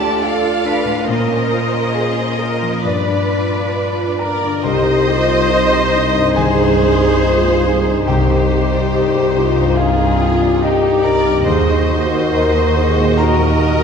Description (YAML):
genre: cinematic, emotional film score for orchestra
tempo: 70 BPM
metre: 4/4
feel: rubato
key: C minor from 4.6 s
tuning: A4 = 440 Hz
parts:
  - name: warm symphonic violin section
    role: melody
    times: 0.0-13.8 s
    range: Eb4 to A5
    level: -25 LUFS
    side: left 3 dB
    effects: none
  - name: warm symphonic violin section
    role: second line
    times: 0.0-13.8 s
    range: G4 to Eb5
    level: -21 LUFS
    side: left 1 dB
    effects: none
  - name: rich symphonic viola section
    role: accompaniment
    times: 0.0-13.8 s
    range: Db4 to C5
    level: -20 LUFS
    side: right 3 dB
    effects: none
  - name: warm concert grand piano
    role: accompaniment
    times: 0.0-13.8 s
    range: C2 to C6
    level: -20 LUFS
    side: left 2 dB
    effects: none
  - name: concert harp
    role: arpeggios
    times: 0.0-13.8 s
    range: G2 to D6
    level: -24 LUFS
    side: left 6 dB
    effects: none
  - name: rich symphonic cello section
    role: bass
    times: 0.0-13.8 s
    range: C2 to Cb5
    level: -22 LUFS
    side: right 3 dB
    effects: none
  - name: mellow French horn section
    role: sustained chords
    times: 4.6-13.8 s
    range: Eb4 to Bb4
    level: -19 LUFS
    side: left 2 dB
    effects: none
  - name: rich symphonic double bass section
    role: bass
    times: 4.6-13.8 s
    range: C2 to Eb2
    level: -20 LUFS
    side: right 2 dB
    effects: none
room: wet scoring stage reverb, RT60 1.7 s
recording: heard from further back in the room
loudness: -13 LUFS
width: side -6 dB against mid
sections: 0.0-4.6 A section; 4.6-13.8 A section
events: none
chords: 0.0 Dm; 1.1 Bbmadd9; 2.8 G7; 4.6 Cmadd9; 11.5 Ebm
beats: 0.23 | 1.09 1.95 2.84 3.74 | 4.63 5.49 6.36 7.21 | 8.07 8.93 9.78 10.63 | 11.47 12.33 13.18